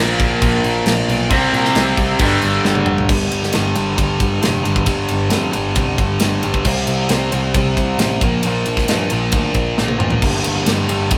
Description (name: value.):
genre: hard rock.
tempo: 135 BPM.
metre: 4/4.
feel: straight.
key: G minor.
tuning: A4 = 442 Hz.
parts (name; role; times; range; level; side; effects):
biting overdriven guitar; riff; 0.0-11.2 s; G2 to C4; -21 LUFS; equal; none.
overdriven semi-hollow guitar; riff; 0.0-3.1 s; G2 to C4; -20 LUFS; equal; none.
picked electric bass; bass; 0.0-11.2 s; F1 to Bb2; -24 LUFS; equal; none.
tight metal drum kit; drums; 0.2-11.2 s; crash cymbal, kick drum, ride cymbal, snare drum, toms; -22 LUFS; equal; none.
room: light reverb.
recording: band playing live in one room.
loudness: -17 LUFS.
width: mono.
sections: 0.0-3.1 A section; 3.1-11.2 B section.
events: drum fill 2.6-3.1, 9.8-10.2.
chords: 0.0 Bb5; 1.3 C5; 2.2 G5; 6.7 C5; 8.2 Bb5; 10.2 G5.